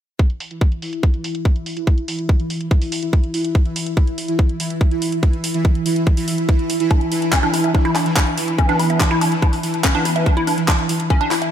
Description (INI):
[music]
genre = psychedelic trance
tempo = 143 BPM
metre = 4/4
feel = straight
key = unclear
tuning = A4 = 440 Hz
[part]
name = pulsing gated texture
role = sustained chords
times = 0.5-11.5 s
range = E3 to E4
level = -21 LUFS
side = right 1 dB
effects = chorus, built-in reverb, sidechain pumping
[part]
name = electronic kick drum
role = drums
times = 0.2-11.2 s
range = none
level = -16 LUFS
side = equal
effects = overdrive
[part]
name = garage drum kit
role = drums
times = 0.2-11.5 s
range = handclaps, hi-hat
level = -25 LUFS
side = right 1 dB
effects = overdrive, low-pass filter on hats, low-pass filter on snare
[part]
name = woody wave-folded pluck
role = riff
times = 6.9-11.5 s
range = C#4 to E5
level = -20 LUFS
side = left 1 dB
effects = chorus, auto-pan, sidechain pumping, diffuse ambient delay
[part]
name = formant-sweep wobble bass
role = second line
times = 8.6-10.3 s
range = B3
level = -31 LUFS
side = left 4 dB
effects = chorus, sidechain pumping, high-pass filter, diffuse ambient delay
[sound]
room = light reverb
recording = none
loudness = -16 LUFS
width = side -10 dB against mid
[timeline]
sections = 0.2-11.5 A section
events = filter sweep on drum 0.2-11.5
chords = 0.2 N.C.; 6.9 E5